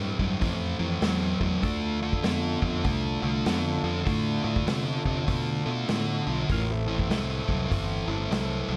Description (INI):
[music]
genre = blues rock power trio and southern rock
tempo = 99 BPM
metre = 4/4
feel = swing 63% on 8ths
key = unclear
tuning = A4 = 440 Hz
[part]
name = percussive tonewheel organ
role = sustained chords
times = 0.0-8.8 s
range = E3 to Bb4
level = -38 LUFS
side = equal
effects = slow rotary speaker, overdrive
[part]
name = thick fuzz guitar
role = riff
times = 0.0-8.8 s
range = A2 to B3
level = -31 LUFS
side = equal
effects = distortion
[part]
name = fingered electric bass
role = bass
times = 0.0-8.8 s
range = G1 to C3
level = -33 LUFS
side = equal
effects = none
[part]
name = vintage drum kit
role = drums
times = 0.2-8.5 s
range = hi-hat, kick drum, snare drum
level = -32 LUFS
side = equal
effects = none
[sound]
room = light reverb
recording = none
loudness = -27 LUFS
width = mono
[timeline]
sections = 0.0-8.8 A section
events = none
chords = 0.0 Am; 1.6 Dm; 6.5 Am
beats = 0.42 1.03 | 1.64 2.25 2.85 3.46 | 4.07 4.68 5.29 5.89 | 6.50 7.11 7.71 8.32